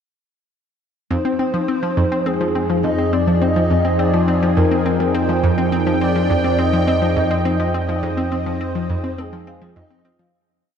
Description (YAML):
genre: ambient, sequencer-driven space music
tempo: 104 BPM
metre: 4/4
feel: straight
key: F dorian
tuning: A4 = 440 Hz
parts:
  - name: breathy flute-like synth lead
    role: melody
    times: 1.1-10.2 s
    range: Ab4 to Eb5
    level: -23 LUFS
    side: right 1 dB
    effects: ensemble chorus, tape echo
  - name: sweeping resonant pad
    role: sustained chords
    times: 1.7-10.3 s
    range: F3 to G5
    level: -23 LUFS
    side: equal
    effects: chorus
  - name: vibraphone with medium mallets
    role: arpeggios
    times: 1.1-10.3 s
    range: Eb4 to F5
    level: -26 LUFS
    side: moving between left 4 dB and right 2 dB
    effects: auto-pan, tape echo
  - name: analog pluck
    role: riff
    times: 1.1-10.3 s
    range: F2 to C4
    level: -21 LUFS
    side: left 1 dB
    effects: chorus, tape echo
  - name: analog drone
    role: bass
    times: 2.3-10.3 s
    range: F2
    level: -22 LUFS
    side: right 1 dB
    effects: chorus
room: wet huge ambient reverb, RT60 8.0 s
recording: dark, warm production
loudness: -16 LUFS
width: side -7 dB against mid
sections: 1.1-10.3 A section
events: fade-out 7.3-10.3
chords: 1.1 Fm7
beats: | 1.11 1.68 2.26 2.84 | 3.42 3.99 4.57 5.14 | 5.72 6.30 6.88 7.45 | 8.03 8.61 9.18 9.76